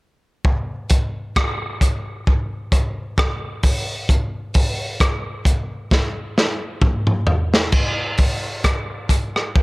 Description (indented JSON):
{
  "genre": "reggae",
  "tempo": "66 BPM",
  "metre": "4/4",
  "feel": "swing 56% on 16ths",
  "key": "none",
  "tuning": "none",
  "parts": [
    { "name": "crunchy breakbeat drum kit", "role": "drums", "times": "0.4-9.6 s", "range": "crash cymbal, hi-hat, kick drum, rim click, snare drum, toms", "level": "-18 LUFS", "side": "equal", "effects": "none" }
  ],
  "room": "light reverb",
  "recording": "none",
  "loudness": "-18 LUFS",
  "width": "side -24 dB against mid",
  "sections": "0.4-7.7 A section; 7.7-9.6 B section",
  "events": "drum fill 5.9-7.7",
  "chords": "none"
}